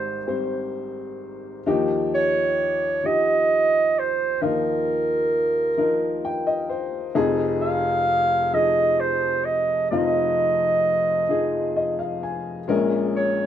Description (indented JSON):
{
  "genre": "acoustic folk-pop ballad",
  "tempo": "44 BPM (dotted quarters)",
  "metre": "6/8",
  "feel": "straight",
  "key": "unclear",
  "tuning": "A4 = 441 Hz",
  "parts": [
    { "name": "mellow clarinet", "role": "melody", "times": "0.0-13.5 s", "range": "Bb4 to F5", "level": "-20 LUFS", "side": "right 2 dB", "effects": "none" },
    { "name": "warm upright piano", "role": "accompaniment", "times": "0.0-13.5 s", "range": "F1 to Ab5", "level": "-24 LUFS", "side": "left 3 dB", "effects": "none" }
  ],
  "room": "light reverb",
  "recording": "minimal, uncompressed stereo recording",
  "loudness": "-20 LUFS",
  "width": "side -10 dB against mid",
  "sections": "0.0-1.7 A section; 1.7-13.5 B section",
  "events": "none",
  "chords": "0.0 Abmaj9; 1.7 Ebadd9; 7.2 Fm7; 12.7 Bbm7"
}